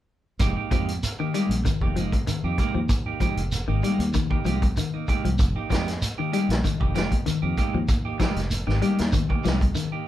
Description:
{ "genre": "afrobeat", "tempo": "96 BPM", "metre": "4/4", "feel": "swing 53% on 16ths", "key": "F minor", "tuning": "A4 = 440 Hz", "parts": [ { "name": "clean electric guitar", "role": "stabs", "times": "0.4-10.1 s", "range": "Ab3 to G4", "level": "-30 LUFS", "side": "right 5 dB", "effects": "none" }, { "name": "fingered electric bass", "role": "bass", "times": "0.4-9.7 s", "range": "F1 to F2", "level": "-28 LUFS", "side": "equal", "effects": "none" }, { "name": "vintage drum kit", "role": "drums", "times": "0.4-9.9 s", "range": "hi-hat, kick drum, snare drum", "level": "-26 LUFS", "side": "equal", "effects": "none" }, { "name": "shekere", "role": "percussion", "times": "0.4-9.9 s", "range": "none", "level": "-31 LUFS", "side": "right 2 dB", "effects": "none" }, { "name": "clean electric guitar", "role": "arpeggios", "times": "0.7-10.0 s", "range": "Eb3 to G3", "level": "-28 LUFS", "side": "left 6 dB", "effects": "none" } ], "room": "moderate small room reverb, RT60 0.6 s", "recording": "band playing live in one room", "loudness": "-22 LUFS", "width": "side -13 dB against mid", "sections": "0.4-10.1 A section", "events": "none", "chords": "0.4 Fm11", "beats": "| 0.41 1.03 1.65 2.28 | 2.90 3.52 4.15 4.77 | 5.40 6.02 6.64 7.27 | 7.89 8.51 9.14 9.76" }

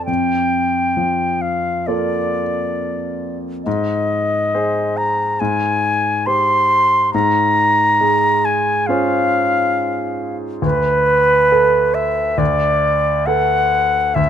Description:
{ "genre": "classical, impressionist duo for flute and grand piano", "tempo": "68 BPM", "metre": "4/4", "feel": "rubato", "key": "unclear", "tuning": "A4 = 441 Hz", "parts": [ { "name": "concert flute", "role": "melody", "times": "0.0-14.3 s", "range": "B4 to C6", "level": "-16 LUFS", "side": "equal", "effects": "none" }, { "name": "clear concert grand piano", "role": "accompaniment", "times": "0.0-14.3 s", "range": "D2 to D5", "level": "-20 LUFS", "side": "equal", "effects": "none" } ], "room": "light reverb", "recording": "close, detailed microphones", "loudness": "-14 LUFS", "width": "side -9 dB against mid", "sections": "0.0-14.3 A section", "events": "none", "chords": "0.1 Bbmaj7/F; 3.7 Ab; 5.4 Abmaj7; 7.1 Dbmaj7/Ab; 10.6 D5", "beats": "| 0.08 0.98 1.87 2.77 | 3.66 4.54 5.40 6.26 | 7.13 8.01 8.88 9.76 | 10.64 11.53 12.40 13.29 | 14.18" }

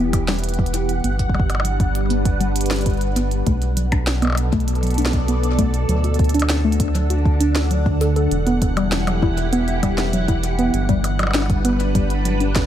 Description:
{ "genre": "IDM", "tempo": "99 BPM", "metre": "4/4", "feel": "straight", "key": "E minor", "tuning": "A4 = 440 Hz", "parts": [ { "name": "soft string machine", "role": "sustained chords", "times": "0.0-12.7 s", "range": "B2 to F#5", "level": "-24 LUFS", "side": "equal", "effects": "phaser, ensemble chorus" }, { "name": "warbly dusty pluck", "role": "arpeggios", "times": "0.0-12.5 s", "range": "F#3 to A4", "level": "-24 LUFS", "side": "left 1 dB", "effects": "chorus, ping-pong delay" }, { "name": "round analog bass", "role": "bass", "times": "0.0-12.7 s", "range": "E1 to D2", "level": "-21 LUFS", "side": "equal", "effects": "none" }, { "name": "electronic kick drum", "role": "drums", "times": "0.1-12.7 s", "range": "none", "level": "-20 LUFS", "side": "equal", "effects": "none" }, { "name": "glitchy drum kit", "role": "drums", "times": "0.1-12.7 s", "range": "hi-hat, percussion blips, snare drum", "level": "-26 LUFS", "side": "equal", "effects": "ping-pong delay" } ], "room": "light reverb", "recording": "none", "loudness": "-17 LUFS", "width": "side -11 dB against mid", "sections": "0.0-12.7 A section", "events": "none", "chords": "0.0 Emadd9; 1.0 Gmaj7; 3.5 Bm7; 5.9 D; 8.3 Emadd9; 10.7 Gmaj7", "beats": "0.44 | 1.04 1.65 2.25 2.86 | 3.47 4.07 4.68 5.29 | 5.89 6.50 7.10 7.71 | 8.31 8.92 9.53 10.13 | 10.74 11.35 11.95 12.56" }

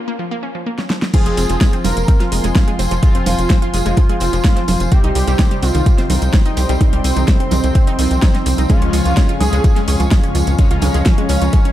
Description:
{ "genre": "melodic techno", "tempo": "127 BPM", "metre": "4/4", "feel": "straight", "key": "F minor", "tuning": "A4 = 441 Hz", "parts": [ { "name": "wide unison pluck", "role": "arpeggios", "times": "0.0-11.7 s", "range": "Eb3 to F5", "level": "-24 LUFS", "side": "right 1 dB", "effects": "sidechain pumping, dub echo" }, { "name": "deep house drum kit", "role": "drums", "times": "0.8-11.7 s", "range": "congas, crash cymbal, hi-hat, snare drum", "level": "-22 LUFS", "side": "right 1 dB", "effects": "studio ambience" }, { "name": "wide unison lead", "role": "melody", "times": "1.1-11.7 s", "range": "C4 to Bb4", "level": "-23 LUFS", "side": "right 1 dB", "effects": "vintage 12-bit sampler grit, sidechain pumping, dub echo" }, { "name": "lush unison pad", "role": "sustained chords", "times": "1.1-11.7 s", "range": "Eb4 to Db6", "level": "-27 LUFS", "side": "equal", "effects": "chorus, sidechain pumping" }, { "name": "analog synth brass", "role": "stabs", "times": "1.1-11.7 s", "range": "C3 to F4", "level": "-24 LUFS", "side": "left 3 dB", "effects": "chorus, sidechain pumping, dub echo" }, { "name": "analog drone", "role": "drone", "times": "2.9-11.7 s", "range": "F2", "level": "-29 LUFS", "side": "equal", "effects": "none" }, { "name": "electronic kick drum", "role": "drums", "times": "1.1-11.6 s", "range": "none", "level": "-13 LUFS", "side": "equal", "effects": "studio ambience" }, { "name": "tambourine", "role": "percussion", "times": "1.1-11.6 s", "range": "none", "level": "-31 LUFS", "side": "right 3 dB", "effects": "none" }, { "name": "tight sequencer bass", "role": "bass", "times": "1.3-11.5 s", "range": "F1 to Db2", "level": "-17 LUFS", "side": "equal", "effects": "sidechain pumping" } ], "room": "digital ambience", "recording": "dark, warm production", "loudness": "-12 LUFS", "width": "side -13 dB against mid", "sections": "0.0-1.1 A section; 1.1-11.7 B section", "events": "break 0.0-1.1; build-up 0.0-1.1; drum fill 0.8-1.1; drop 1.1-11.7", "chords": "0.0 Bbm; 1.1 Fm; 4.9 Cm; 8.7 Db", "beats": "0.19 0.67 | 1.14 1.61 2.08 2.56 | 3.03 3.50 3.97 4.45 | 4.92 5.39 5.86 6.33 | 6.81 7.28 7.75 8.22 | 8.70 9.17 9.64 10.11 | 10.59 11.06 11.53" }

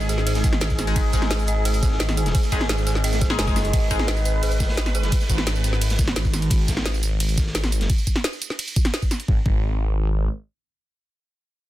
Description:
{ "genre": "dark technical drum and bass", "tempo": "173 BPM", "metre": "4/4", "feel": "straight", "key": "G# minor", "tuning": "A4 = 445 Hz", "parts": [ { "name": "sweeping resonant pad", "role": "sustained chords", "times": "0.0-6.5 s", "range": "G#3 to B4", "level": "-31 LUFS", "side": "right 1 dB", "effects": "chorus, sidechain pumping" }, { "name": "dark detuned synth bell", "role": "arpeggios", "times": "0.0-5.0 s", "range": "G#4 to G#5", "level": "-31 LUFS", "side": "right 3 dB", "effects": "chorus, sidechain pumping, ping-pong delay" }, { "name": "phased detuned saw bass", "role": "bass", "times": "0.0-10.3 s", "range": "F#1 to G#1", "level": "-23 LUFS", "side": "equal", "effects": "phaser" }, { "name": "drum and bass drum kit", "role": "drums", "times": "0.0-9.3 s", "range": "hi-hat, ride cymbal, snare drum, tambourine", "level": "-27 LUFS", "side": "equal", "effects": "overdrive" }, { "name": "crunchy breakbeat drum kit", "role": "drums", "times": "0.1-7.9 s", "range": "hi-hat, snare drum", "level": "-35 LUFS", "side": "equal", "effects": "none" }, { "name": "electronic kick drum", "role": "drums", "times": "0.4-9.6 s", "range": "none", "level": "-21 LUFS", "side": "equal", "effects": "overdrive" }, { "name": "band-passed chord stab", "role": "stabs", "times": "0.9-5.3 s", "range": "G#3 to G#4", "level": "-30 LUFS", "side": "left 2 dB", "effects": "phaser, ping-pong delay" } ], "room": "little or no reverb", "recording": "dense, heavily limited modern master", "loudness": "-19 LUFS", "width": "side -15 dB against mid", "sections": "0.0-9.3 A section; 9.3-11.7 B section", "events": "drop 0.0-9.3", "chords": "0.0 G#5; 9.3 N.C.", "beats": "0.27 0.61 | 0.96 1.31 1.65 2.00 | 2.35 2.69 3.04 3.39 | 3.73 4.08 4.43 4.78 | 5.12 5.47 5.82 6.16 | 6.51 6.86 7.20 7.55 | 7.90 8.24 8.59 8.94 | 9.28 9.63 9.98" }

